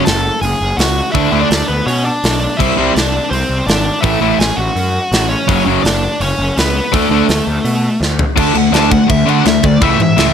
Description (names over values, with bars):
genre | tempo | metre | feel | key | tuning
punk rock | 166 BPM | 4/4 | straight | unclear | A4 = 439 Hz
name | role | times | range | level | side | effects
high-gain lead guitar | melody | 0.0-10.3 s | A3 to A5 | -17 LUFS | left 1 dB | distortion
overdriven electric guitar | riff | 0.0-10.3 s | F#2 to D4 | -15 LUFS | left 13 dB | none
overdriven semi-hollow guitar | riff | 0.0-10.3 s | F#2 to D4 | -16 LUFS | right 16 dB | none
fuzz picked electric bass | bass | 0.1-10.3 s | F#1 to D3 | -18 LUFS | equal | overdrive
tight metal drum kit | drums | 0.1-10.3 s | crash cymbal, hi-hat, kick drum, snare drum, toms | -17 LUFS | equal | none
room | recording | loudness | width
little or no reverb | none | -11 LUFS | side -8 dB against mid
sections
0.0-8.4 A section; 8.4-10.3 B section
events
drum fill 8.0-8.4; lead electric guitar solo 8.4-10.3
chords
0.0 F#m; 1.1 D5; 2.6 C; 4.0 A; 5.5 F#5; 6.9 D5; 9.8 A/C#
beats
0.07 0.43 0.79 | 1.15 1.51 1.87 2.23 | 2.59 2.96 3.32 3.68 | 4.04 4.40 4.76 5.12 | 5.48 5.84 6.21 6.57 | 6.93 7.29 7.65 8.01 | 8.38 8.74 9.10 9.46 | 9.82 10.19